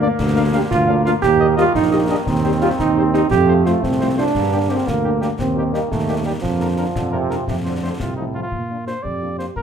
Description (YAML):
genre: military-style march for wind band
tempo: 115 BPM (dotted quarters)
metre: 6/8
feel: straight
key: Bb major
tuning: A4 = 441 Hz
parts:
  - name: warm cornet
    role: melody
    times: 0.0-9.6 s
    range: Eb4 to F5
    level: -30 LUFS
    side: equal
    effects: none
  - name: dark French horn section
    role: accompaniment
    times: 0.0-9.4 s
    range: F3 to G4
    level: -24 LUFS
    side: left 7 dB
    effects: none
  - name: clear trombone section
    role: sustained chords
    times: 0.0-8.5 s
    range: A2 to C4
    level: -25 LUFS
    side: equal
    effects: none
  - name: mellow tuba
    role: bass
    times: 0.0-9.6 s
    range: Bb1 to Bb2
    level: -21 LUFS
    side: right 2 dB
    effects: none
  - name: concert snare drum, clash cymbals and concert bass drum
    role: drums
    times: 0.2-9.6 s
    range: none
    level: -28 LUFS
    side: left 3 dB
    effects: none
  - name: warm euphonium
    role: second line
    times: 0.5-9.6 s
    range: F3 to G4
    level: -19 LUFS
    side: right 4 dB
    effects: none
room: moderate large studio reverb, RT60 0.8 s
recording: none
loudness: -16 LUFS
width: side -7 dB against mid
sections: 0.0-8.5 A section; 8.5-9.6 B section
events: none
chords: 0.2 Bb/D; 1.2 Eb; 2.3 Cm/Eb; 3.3 F; 4.3 Gm; 5.4 Cm7/Eb; 6.4 Bb/F; 7.5 F; 8.5 Bb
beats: | 0.19 0.71 | 1.23 1.75 | 2.27 2.79 | 3.31 3.83 | 4.35 4.87 | 5.39 5.91 | 6.43 6.95 | 7.47 8.00 | 8.52 9.04 | 9.56